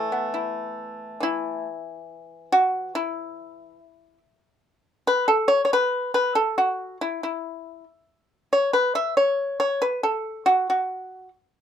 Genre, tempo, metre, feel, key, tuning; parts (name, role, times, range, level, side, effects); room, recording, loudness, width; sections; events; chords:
chinese traditional, Chinese solo plucked strings; 70 BPM; 2/4; uneven beats, rubato; A4 = 440 Hz
pipa; solo; 0.0-11.3 s; A2 to E5; -22 LUFS; equal
light reverb; minimal, uncompressed stereo recording; -21 LUFS; side -9 dB against mid
0.0-1.2 A section; 1.2-11.6 B section